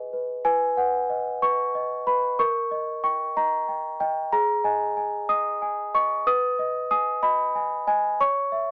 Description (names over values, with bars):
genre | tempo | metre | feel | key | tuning
classical, lullaby for celesta | 62 BPM (dotted quarters) | 6/8 | straight | G# minor | A4 = 441 Hz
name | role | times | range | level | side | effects
celesta | solo | 0.0-8.7 s | G#4 to D#6 | -24 LUFS | equal | none
room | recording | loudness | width
little or no reverb | worn, warbling old tape, cassette tape, warbly pitch drift, small speaker sound | -24 LUFS | mono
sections
0.4-8.7 A section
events
none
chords
0.4 B; 2.4 D#7/A#; 4.3 G#5; 6.3 G#m/B; 8.2 C#m